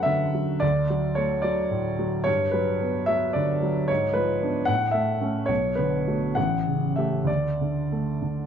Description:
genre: classical, romantic character piece for solo piano.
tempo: 63-77 BPM (dotted quarters).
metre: 6/8.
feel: rubato.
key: D major.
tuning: A4 = 440 Hz.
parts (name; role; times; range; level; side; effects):
warm baby grand piano; solo; 0.0-8.5 s; A1 to F#5; -22 LUFS; equal; none.
room: light reverb.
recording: dark, warm production.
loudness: -22 LUFS.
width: side -8 dB against mid.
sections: 0.0-8.5 A section.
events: none.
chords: 0.0 D/F#; 0.6 D; 2.3 Gmaj7; 3.9 G#dim7; 4.7 A; 5.5 Bm7; 6.4 A7; 7.3 D5.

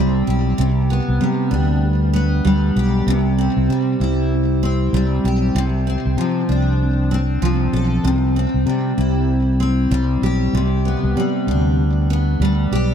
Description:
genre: acoustic pop.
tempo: 96 BPM.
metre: 4/4.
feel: swing 60% on 16ths.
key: C major.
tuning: A4 = 439 Hz.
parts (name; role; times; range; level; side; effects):
picked steel-string acoustic guitar; accompaniment; 0.0-12.9 s; C3 to A4; -19 LUFS; equal; double-tracked left and right, tape echo.
fretless electric bass; bass; 0.0-12.9 s; B1 to C3; -18 LUFS; equal; none.
room: small room ambience.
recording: echo-heavy mix.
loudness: -16 LUFS.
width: side -8 dB against mid.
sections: 0.0-12.9 A section.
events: none.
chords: 0.0 C; 0.6 G/C; 3.1 C; 5.6 Dm7/C; 8.0 C; 10.5 G/C.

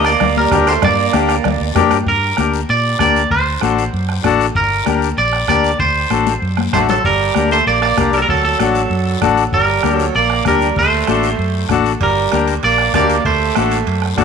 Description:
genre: latin, cumbia.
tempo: 193 BPM.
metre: 4/4.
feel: straight.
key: G harmonic minor.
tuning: A4 = 440 Hz.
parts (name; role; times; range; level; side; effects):
twangy electric guitar; melody; 0.0-14.1 s; A4 to D5; -17 LUFS; right 2 dB; spring reverb, slapback echo.
growling tenor saxophone; second line; 0.0-1.7, 6.7-14.1 s; F#3 to Bb3; -20 LUFS; right 11 dB; none.
accordion; accompaniment; 0.0-14.2 s; D4 to Bb4; -19 LUFS; left 8 dB; none.
vintage muted fingered electric bass; bass; 0.0-14.2 s; G1 to Bb2; -20 LUFS; right 1 dB; none.
bombo; percussion; 0.0-14.2 s; none; -23 LUFS; right 2 dB; none.
guiro; percussion; 0.0-14.2 s; none; -30 LUFS; left 15 dB; none.
congas; percussion; 0.2-14.2 s; none; -22 LUFS; left 12 dB; none.
cowbell and timbales; percussion; 0.2-1.9, 12.0-14.2 s; none; -26 LUFS; right 14 dB; none.
room: moderate plate reverb, RT60 3.1 s.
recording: 1960s-style stereo with parts hard left and right.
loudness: -12 LUFS.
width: side -6 dB against mid.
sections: 0.0-2.1 A section; 2.1-14.2 B section.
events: drum fill 6.3-7.0.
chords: 0.0 Gm; 3.3 D7; 4.6 Gm; 5.8 D7; 7.0 Gm; 8.3 D; 9.5 Gm; 10.8 D7; 12.0 Gm; 13.3 D7.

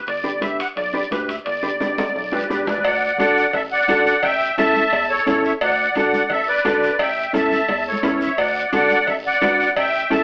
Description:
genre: latin, cumbia.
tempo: 173 BPM.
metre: 4/4.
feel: straight.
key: D major.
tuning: A4 = 440 Hz.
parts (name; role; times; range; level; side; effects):
musette accordion; melody; 0.0-10.2 s; G4 to A5; -21 LUFS; equal; none.
rubbery square bass; bass; 0.1-10.2 s; G1 to E2; -36 LUFS; equal; none.
congas; percussion; 0.1-10.2 s; none; -35 LUFS; equal; none.
guiro; percussion; 0.1-10.2 s; none; -40 LUFS; equal; none.
timbales and cowbell; percussion; 0.1-10.2 s; none; -29 LUFS; equal; none.
mellow electric guitar; accompaniment; 0.2-10.2 s; C#4 to D5; -24 LUFS; equal; none.
room: moderate studio reverb, RT60 0.6 s.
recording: band playing live in one room, AM radio sound.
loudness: -19 LUFS.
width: mono.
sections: 0.0-2.9 A section; 2.9-10.2 B section.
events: drum fill 1.8-2.9, 7.7-8.4.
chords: 0.0 G; 2.9 D; 4.2 A7; 5.6 D; 7.0 A7; 8.4 D.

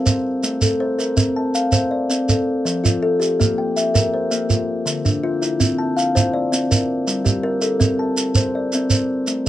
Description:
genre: southern african traditional, mbira-style interlocking cycle.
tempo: 108 BPM (dotted quarters).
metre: 12/8.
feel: straight.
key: C mixolydian.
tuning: A4 = 440 Hz.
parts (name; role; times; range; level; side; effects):
kalimba; arpeggios; 0.0-9.5 s; D3 to A5; -19 LUFS; left 1 dB; none.
shekere; percussion; 0.1-9.5 s; none; -19 LUFS; right 3 dB; none.
room: light reverb.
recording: close, detailed microphones.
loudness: -17 LUFS.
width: side -13 dB against mid.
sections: 0.0-9.5 A section.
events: none.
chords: 0.1 Am; 1.2 C13sus4; 2.3 F; 3.4 C7/Bb; 4.5 Dm; 5.6 C; 6.7 Gm; 7.8 Amadd11/C; 8.9 Am.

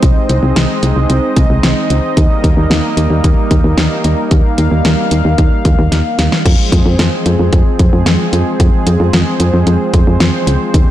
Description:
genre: synth-pop.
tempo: 112 BPM.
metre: 4/4.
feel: straight.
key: unclear.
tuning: A4 = 440 Hz.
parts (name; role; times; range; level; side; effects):
warm analog pad; sustained chords; 0.0-10.9 s; Eb3 to F5; -16 LUFS; right 1 dB; chorus.
solid FM bass; bass; 0.0-10.8 s; C2 to F2; -12 LUFS; equal; tube saturation.
pop drum kit; drums; 0.0-10.9 s; crash cymbal, hi-hat, kick drum, snare drum; -13 LUFS; equal; none.
room: light reverb.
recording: blown-out, overdriven recording, overdrive.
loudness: -10 LUFS.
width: side -13 dB against mid.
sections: 0.0-6.5 A section; 6.5-10.9 B section.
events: drum fill 5.9-6.5.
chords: 0.0 Ab/C; 2.2 Eb; 6.5 Fm.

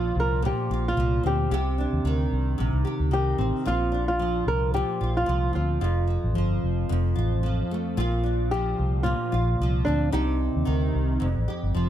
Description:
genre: acoustic pop.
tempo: 111 BPM.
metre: 4/4.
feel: swing 55% on 16ths.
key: Bb major.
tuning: A4 = 439 Hz.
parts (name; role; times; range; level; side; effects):
flamenco guitar; melody; 0.0-11.2 s; D4 to Bb4; -28 LUFS; equal; ping-pong delay.
nylon-string guitar; accompaniment; 0.0-11.9 s; F2 to G4; -28 LUFS; equal; double-tracked left and right.
vintage muted fingered electric bass; bass; 0.0-11.9 s; F1 to Eb2; -25 LUFS; equal; none.
room: studio reverb.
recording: none.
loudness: -22 LUFS.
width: side -11 dB against mid.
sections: 0.0-11.9 A section.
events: none.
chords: 0.0 Bbadd9; 1.5 Cmadd9; 3.7 Bbadd9; 5.8 F; 8.0 Bbadd9; 10.1 Cmadd9; 11.2 Fadd9.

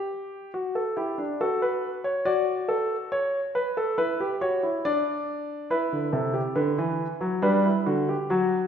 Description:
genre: classical, baroque-style 3-part fugue for grand piano.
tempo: 70 BPM.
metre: 3/4.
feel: straight.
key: G major.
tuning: A4 = 441 Hz.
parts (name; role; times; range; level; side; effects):
warm grand piano; solo; 0.0-8.7 s; C3 to D5; -24 LUFS; equal; none.
room: wet recital hall reverb, RT60 1.5 s.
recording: heard from further back in the room.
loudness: -24 LUFS.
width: side -8 dB against mid.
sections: 0.0-8.7 A section.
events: none.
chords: 0.0 N.C.; 0.5 D; 2.3 D/F#; 3.1 C#m; 4.8 N.C.; 5.7 G.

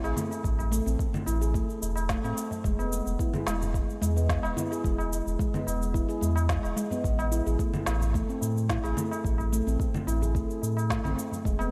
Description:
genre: organic downtempo.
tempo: 109 BPM.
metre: 4/4.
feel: straight.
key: unclear.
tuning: A4 = 442 Hz.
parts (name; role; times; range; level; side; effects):
handpan; arpeggios; 0.0-11.7 s; G#3 to G#4; -34 LUFS; equal; tape echo.
warm sub bass; bass; 0.0-11.7 s; E1 to A2; -31 LUFS; equal; sidechain pumping.
electronic shaker, congas and snare drum; drums; 0.0-11.7 s; none; -38 LUFS; equal; overdrive.
tabla; percussion; 0.0-11.7 s; none; -41 LUFS; equal; slapback echo.
electronic kick drum; drums; 0.4-11.6 s; none; -33 LUFS; equal; overdrive.
room: moderate lush hall reverb, RT60 2.2 s.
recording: big arena sound, lossy compression artefacts.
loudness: -28 LUFS.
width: mono.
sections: 0.0-11.7 A section.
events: none.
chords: 0.0 A5; 2.6 E; 7.0 N.C..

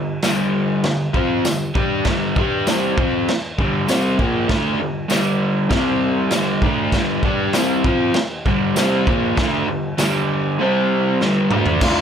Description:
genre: garage rock duo or trio.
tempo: 98 BPM.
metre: 4/4.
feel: straight.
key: G minor.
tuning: A4 = 439 Hz.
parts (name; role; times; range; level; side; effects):
crunchy overdriven guitar; riff; 0.0-12.0 s; G2 to G4; -18 LUFS; equal; none.
raw garage drum kit; drums; 0.2-12.0 s; crash cymbal, kick drum, snare drum, toms; -21 LUFS; equal; none.
tambourine; percussion; 0.2-10.1 s; none; -31 LUFS; left 6 dB; none.
room: light reverb.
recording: none.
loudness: -16 LUFS.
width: side -8 dB against mid.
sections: 0.0-11.8 A section.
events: drum fill 11.2-11.8.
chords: 0.0 G5; 5.7 C5; 6.3 Gm; 10.6 C5; 11.2 G5.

